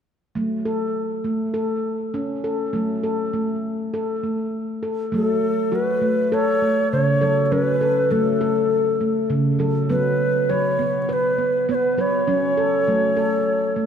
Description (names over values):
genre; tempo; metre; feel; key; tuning
world meditative, meditative tuned percussion; 101 BPM; 4/4; straight; F# minor pentatonic; A4 = 445 Hz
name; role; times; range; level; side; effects
handpan; arpeggios; 0.4-13.9 s; C#3 to B4; -21 LUFS; equal; diffuse ambient delay
hollow Native American-style cedar flute; melody; 5.2-13.9 s; A4 to C#5; -20 LUFS; equal; diffuse ambient delay
room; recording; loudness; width
wet scoring stage reverb, RT60 2.2 s; none; -19 LUFS; side -7 dB against mid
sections
0.4-5.1 A section; 5.1-13.9 B section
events
none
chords
0.4 F#m; 9.9 F#sus4; 12.3 F#m